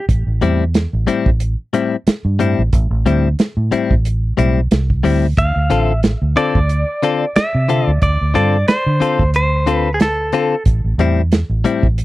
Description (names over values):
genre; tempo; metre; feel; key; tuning
straight-eighth soul blues; 91 BPM; 4/4; swing 56% on 16ths; A minor; A4 = 440 Hz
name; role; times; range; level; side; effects
direct-recorded clean electric guitar; melody; 0.0, 5.4-10.6 s; G#4 to F5; -19 LUFS; right 1 dB; spring reverb
vintage muted fingered electric bass; bass; 0.1-12.0 s; A1 to D3; -16 LUFS; right 1 dB; none
warm soul drum kit; drums; 0.1-12.0 s; hi-hat, kick drum, snare drum; -15 LUFS; right 1 dB; none
direct-recorded clean electric guitar; stabs; 0.4-11.9 s; A2 to A4; -16 LUFS; left 6 dB; none
room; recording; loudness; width
little or no reverb; dry, close 1970s-style studio recording; -13 LUFS; side -16 dB against mid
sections
0.0-12.0 A section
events
none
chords
0.0 Am7; 5.4 Dm7; 10.7 Am7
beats
| 0.08 0.74 1.41 2.07 | 2.73 3.39 4.05 4.71 | 5.37 6.03 6.69 7.35 | 8.01 8.68 9.34 9.99 | 10.65 11.31 11.97